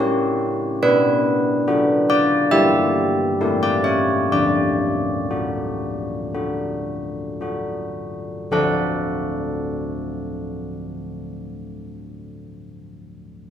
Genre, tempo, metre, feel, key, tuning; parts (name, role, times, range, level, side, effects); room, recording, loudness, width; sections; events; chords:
classical, tune for church bells; 53-73 BPM; 4/4; straight; D major; A4 = 439 Hz
carillon bells; solo; 0.0-12.1 s; D3 to F#5; -19 LUFS; equal
wet recital hall reverb, RT60 1.4 s; heard from further back in the room; -18 LUFS; side -9 dB against mid
0.0-8.5 A section; 8.5-12.9 B section
slowing down 0.0-8.5
0.0 A7 (rootless); 0.8 Bm; 2.5 Em/G; 3.4 A7; 4.3 D